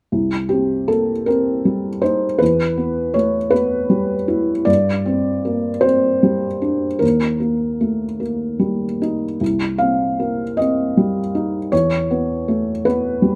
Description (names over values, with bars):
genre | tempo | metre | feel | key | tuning
neoclassical minimalist piano | 52 BPM (dotted quarters) | 6/8 | rubato | unclear | A4 = 441 Hz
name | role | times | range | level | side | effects
felt-muted upright piano | solo | 0.1-13.4 s | C2 to F5 | -19 LUFS | equal | none
room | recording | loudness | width
little or no reverb | recorded outdoors, with no room sound | -19 LUFS | mono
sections
0.1-13.4 A section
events
none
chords
0.1 Cm; 2.4 Em; 4.7 Gsus4; 7.0 Eb; 9.4 Cm; 11.7 E5